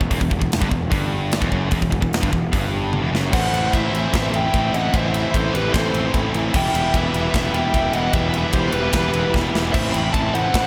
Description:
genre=heavy metal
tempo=150 BPM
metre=4/4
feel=straight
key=E minor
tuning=A4 = 439 Hz
part: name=heavy high-gain guitar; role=riff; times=0.0-10.7 s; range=E2 to E4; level=-29 LUFS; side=equal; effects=distortion, slapback echo
part: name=tight distorted guitar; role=riff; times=0.0-10.7 s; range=E2 to G3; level=-29 LUFS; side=equal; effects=distortion, slapback echo
part: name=fuzz picked electric bass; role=bass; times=0.0-10.7 s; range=E1 to A1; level=-26 LUFS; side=equal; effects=overdrive
part: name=tight metal drum kit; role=drums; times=0.0-10.6 s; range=crash cymbal, hi-hat, kick drum, ride cymbal, snare drum, toms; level=-25 LUFS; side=equal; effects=none
part: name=bluesy overdriven lead guitar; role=melody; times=3.3-10.7 s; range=B4 to B5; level=-26 LUFS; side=equal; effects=distortion, slapback echo
part: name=high-gain lead guitar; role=second line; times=3.3-10.7 s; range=G4 to G5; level=-31 LUFS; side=equal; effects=distortion, slapback echo
part: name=thick fuzz guitar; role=riff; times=3.3-10.7 s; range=A2 to E4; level=-29 LUFS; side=equal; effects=distortion
room=moderate lush hall reverb, RT60 1.9 s, studio reverb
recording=big arena sound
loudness=-20 LUFS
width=mono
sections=0.0-3.3 A section; 3.3-10.7 B section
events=drum fill 2.9-3.3, 9.3-9.7; half time 3.3-10.7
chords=0.0 Em; 3.3 Am; 6.5 Em; 9.7 Am

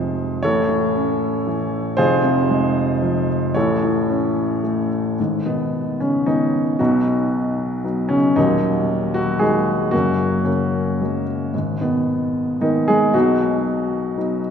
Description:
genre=classical, lyrical solo piano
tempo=114 BPM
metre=3/4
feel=rubato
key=G# minor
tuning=A4 = 444 Hz
part: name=warm grand piano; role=solo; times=0.0-14.5 s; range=D#1 to C#5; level=-17 LUFS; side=equal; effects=none
room=wet church reverb, RT60 3.4 s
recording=recorded in a church or concert hall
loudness=-17 LUFS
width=side -7 dB against mid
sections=0.0-5.2 A section; 5.2-14.5 B section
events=none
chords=0.4 A; 2.0 Fm; 3.6 A; 5.2 G#madd9; 6.8 B; 8.4 D#m; 9.9 F#add9; 11.5 G#madd9; 13.1 B

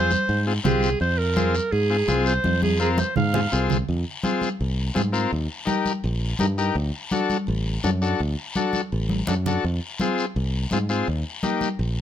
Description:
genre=latin, cumbia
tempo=167 BPM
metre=4/4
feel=straight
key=F dorian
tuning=A4 = 438 Hz
part: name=bright clarinet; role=melody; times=0.0-3.7 s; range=Ab4 to F5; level=-24 LUFS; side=right 2 dB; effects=none
part: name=combo organ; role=accompaniment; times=0.0-11.7 s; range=Bb3 to Bb4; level=-25 LUFS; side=left 4 dB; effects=none
part: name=fingered electric bass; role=bass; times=0.0-12.0 s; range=A1 to Ab2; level=-24 LUFS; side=equal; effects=none
part: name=congas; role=percussion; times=0.1-11.8 s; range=none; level=-28 LUFS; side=right 1 dB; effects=none
part: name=guiro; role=percussion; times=0.1-12.0 s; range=none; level=-35 LUFS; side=left 5 dB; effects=none
room=light reverb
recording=close, detailed microphones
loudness=-21 LUFS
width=side -10 dB against mid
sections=0.0-3.9 A section; 3.9-12.0 B section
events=drum fill 2.4-3.9, 9.1-9.6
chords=0.0 Fm; 5.3 Eb; 6.8 D; 9.6 Fm; 11.1 Eb

